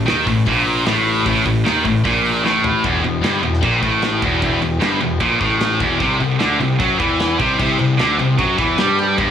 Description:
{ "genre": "heavy metal", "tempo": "151 BPM", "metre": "4/4", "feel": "straight", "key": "E minor", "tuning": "A4 = 439 Hz", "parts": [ { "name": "heavy high-gain guitar", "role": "riff", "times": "0.0-9.3 s", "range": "E2 to G3", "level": "-18 LUFS", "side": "right 5 dB", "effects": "distortion" }, { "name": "scooped high-gain guitar", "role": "riff", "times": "0.0-9.3 s", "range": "E2 to G3", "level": "-20 LUFS", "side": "left 6 dB", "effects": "distortion" }, { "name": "fuzz picked electric bass", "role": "bass", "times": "0.0-9.3 s", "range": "E1 to G2", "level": "-23 LUFS", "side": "equal", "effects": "overdrive" }, { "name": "modern studio drum kit", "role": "drums", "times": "0.1-9.3 s", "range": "crash cymbal, hi-hat, kick drum, snare drum, toms", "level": "-23 LUFS", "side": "left 1 dB", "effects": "none" } ], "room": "light reverb, small room ambience", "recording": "blown-out, overdriven recording, overdrive", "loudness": "-14 LUFS", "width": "side -8 dB against mid", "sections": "0.0-2.8 A section; 2.8-9.3 B section", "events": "drum fill 2.4-2.8", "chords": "0.0 D#5; 2.8 Em; 6.0 C5" }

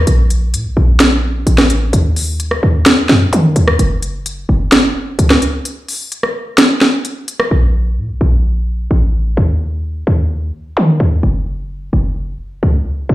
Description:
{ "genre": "hip hop, trap", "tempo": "129 BPM", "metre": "4/4", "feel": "half-time", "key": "unclear", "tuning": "A4 = 440 Hz", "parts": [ { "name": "short 808-style bass", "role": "bass", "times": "0.0-13.1 s", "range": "Gb1 to Eb3", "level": "-13 LUFS", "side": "equal", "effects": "none" }, { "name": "trap drum kit", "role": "drums", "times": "0.1-7.5 s", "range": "hi-hat, rim click, snare drum", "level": "-13 LUFS", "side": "equal", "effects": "none" } ], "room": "moderate digital room reverb, RT60 1.0 s, digital ambience", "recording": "played on a big sound system in a bare room, large studio reverb", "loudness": "-12 LUFS", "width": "side -16 dB against mid", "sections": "0.0-7.5 A section; 7.5-13.1 B section", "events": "kick muted 5.7-7.5", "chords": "none" }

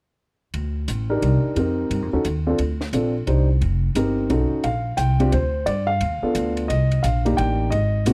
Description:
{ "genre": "jazz piano trio", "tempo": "176 BPM", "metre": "3/4", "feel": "swing 63% on 8ths", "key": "Bb major", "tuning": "A4 = 440 Hz", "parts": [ { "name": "upright bass", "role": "bass", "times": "0.5-8.1 s", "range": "F1 to G2", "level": "-24 LUFS", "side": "equal", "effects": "none" }, { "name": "compact cocktail drum kit", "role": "drums", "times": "0.5-8.1 s", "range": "hi-hat, ride cymbal, snare drum", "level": "-39 LUFS", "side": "equal", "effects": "none" }, { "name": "warm grand piano", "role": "melody", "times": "1.1-8.1 s", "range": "Bb3 to G5", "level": "-24 LUFS", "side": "equal", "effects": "none" } ], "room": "little or no reverb", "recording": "dry, close 1970s-style studio recording", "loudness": "-22 LUFS", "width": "mono", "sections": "0.5-4.6 A section; 4.6-8.1 B section", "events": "none", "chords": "0.5 D5; 1.2 Cm9; 1.6 F9sus4; 2.3 F7/Eb; 2.6 Dm7; 3.3 Cmadd9; 3.6 F9sus4; 4.3 B9; 4.6 Bb69; 5.7 G7; 6.7 Cm9" }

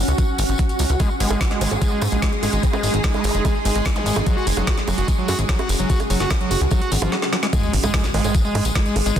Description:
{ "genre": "psychedelic trance", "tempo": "147 BPM", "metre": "4/4", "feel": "straight", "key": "unclear", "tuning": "A4 = 439 Hz", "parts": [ { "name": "plucky analog bass", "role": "bass", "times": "0.0-9.1 s", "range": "F#1 to G#2", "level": "-21 LUFS", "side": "equal", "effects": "tube saturation" }, { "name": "granular cloud pad", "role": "texture", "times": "0.0-9.2 s", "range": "C#4 to G#5", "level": "-28 LUFS", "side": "right 1 dB", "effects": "built-in reverb, sidechain pumping" }, { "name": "garage drum kit", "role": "drums", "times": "0.1-9.2 s", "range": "bongos, hi-hat, snare drum", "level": "-26 LUFS", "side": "right 3 dB", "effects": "overdrive, small room ambience" }, { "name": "tambourine", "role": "percussion", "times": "0.1-9.2 s", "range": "none", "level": "-32 LUFS", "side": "left 5 dB", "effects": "none" }, { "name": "electronic kick drum", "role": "drums", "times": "0.2-9.2 s", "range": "none", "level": "-20 LUFS", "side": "equal", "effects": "overdrive, small room ambience" }, { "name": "evolving wavetable pad", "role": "sustained chords", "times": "1.4-9.2 s", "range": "G#3 to G#4", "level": "-28 LUFS", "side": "equal", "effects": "chorus, built-in reverb, sidechain pumping" }, { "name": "overdriven acid bass", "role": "riff", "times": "1.0-9.2 s", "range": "E#3 to F#4", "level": "-25 LUFS", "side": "moving between left 3 dB and right 6 dB", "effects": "auto-pan, sidechain pumping, dub echo" }, { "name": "vowel-sweep wobble bass", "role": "second line", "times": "1.6-3.3, 8.1-9.2 s", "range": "B3 to D#4", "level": "-34 LUFS", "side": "right 2 dB", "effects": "ensemble chorus, sidechain pumping, high-pass filter, dub echo" }, { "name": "zap and impact", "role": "sound effects", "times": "4.0-4.1, 7.6-9.2 s", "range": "none", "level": "-28 LUFS", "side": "equal", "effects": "none" } ], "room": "light reverb", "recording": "dense, heavily limited modern master", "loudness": "-17 LUFS", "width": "side -9 dB against mid", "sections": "0.0-7.5 A section; 7.5-9.2 B section", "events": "drum fill 7.1-7.5; drop 7.5-9.2; impact 7.5-9.2", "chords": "0.0 F#5; 1.0 G#5; 4.3 F#5; 7.5 G#5" }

